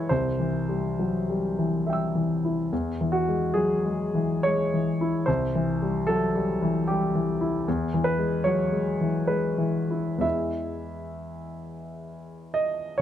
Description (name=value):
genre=neoclassical minimalist piano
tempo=61-77 BPM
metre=3/4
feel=rubato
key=unclear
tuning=A4 = 440 Hz
part: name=warm grand piano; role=solo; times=0.0-13.0 s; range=C2 to E6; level=-24 LUFS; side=left 1 dB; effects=none
room=light reverb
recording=close, detailed microphones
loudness=-23 LUFS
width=side -10 dB against mid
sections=0.0-13.0 A section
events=none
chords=0.1 C; 2.7 E; 5.3 C; 7.7 E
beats=| 0.10 0.98 1.85 | 2.71 3.54 4.44 | 5.27 6.08 6.87 | 7.66 8.45 9.29 | 10.23 11.18 12.10 | 12.99